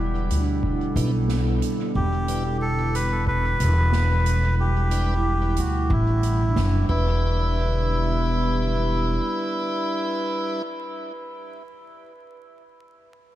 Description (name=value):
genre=ambient dub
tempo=91 BPM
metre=4/4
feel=swing 57% on 16ths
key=E minor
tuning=A4 = 440 Hz
part: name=warbly tape-like pad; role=sustained chords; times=0.0-10.6 s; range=B2 to A4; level=-29 LUFS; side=right 2 dB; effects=chorus, built-in reverb
part: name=vibraphone with soft mallets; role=arpeggios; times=0.0-12.4 s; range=B3 to F#5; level=-32 LUFS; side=right 2 dB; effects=tape echo
part: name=upright bass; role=bass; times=0.0-9.2 s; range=E1 to D2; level=-22 LUFS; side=equal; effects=tube saturation
part: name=soft-mallet drum kit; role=drums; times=0.3-6.7 s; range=hi-hat, snare drum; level=-36 LUFS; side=right 4 dB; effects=dub echo
part: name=electronic kick drum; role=drums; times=0.6-7.0 s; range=none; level=-28 LUFS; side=equal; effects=none
part: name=tonewheel organ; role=stabs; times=1.0-10.6 s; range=G3 to B4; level=-32 LUFS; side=left 2 dB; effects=slow rotary speaker, dub echo
part: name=melodica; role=melody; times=2.0-10.6 s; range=E4 to B4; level=-28 LUFS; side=equal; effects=dub echo
room=light reverb, studio ambience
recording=echo-heavy mix, vinyl crackle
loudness=-20 LUFS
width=side -13 dB against mid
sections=0.0-7.2 A section; 7.2-9.9 B section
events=none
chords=0.0 Em7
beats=0.63 1.29 | 1.95 2.61 3.27 3.93 | 4.59 5.25 5.90 6.56 | 7.22 7.88 8.54 9.20